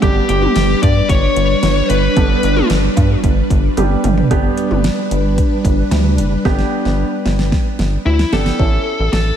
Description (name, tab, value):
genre	synth-pop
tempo	112 BPM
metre	4/4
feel	straight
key	unclear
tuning	A4 = 440 Hz
part	fuzz lead guitar	melody	0.0-2.7, 8.1-9.4 s	E4 to D5	-18 LUFS	left 4 dB	distortion, tape echo
part	warm baby grand piano	accompaniment	0.0-9.4 s	G3 to A4	-22 LUFS	right 4 dB	none
part	string machine, violas	sustained chords	0.0-8.6 s	G3 to B4	-20 LUFS	right 1 dB	ensemble chorus
part	rubbery square bass	bass	0.0-9.3 s	F#1 to G2	-16 LUFS	equal	none
part	deep house drum kit	drums	0.0-9.3 s	cowbell, hi-hat, kick drum, snare drum, toms	-18 LUFS	equal	none
room	moderate lush hall reverb, RT60 2.5 s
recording	dreamy mix soaked in reverb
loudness	-12 LUFS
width	side -9 dB against mid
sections	0.0-4.3 A section; 4.3-8.6 B section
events	drum fill 3.8-4.3, 6.5-8.6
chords	0.0 G; 8.6 A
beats	| 0.02 0.56 1.09 1.63 | 2.17 2.70 3.24 3.77 | 4.31 4.84 5.38 5.92 | 6.45 6.99 7.52 8.06 | 8.59 9.13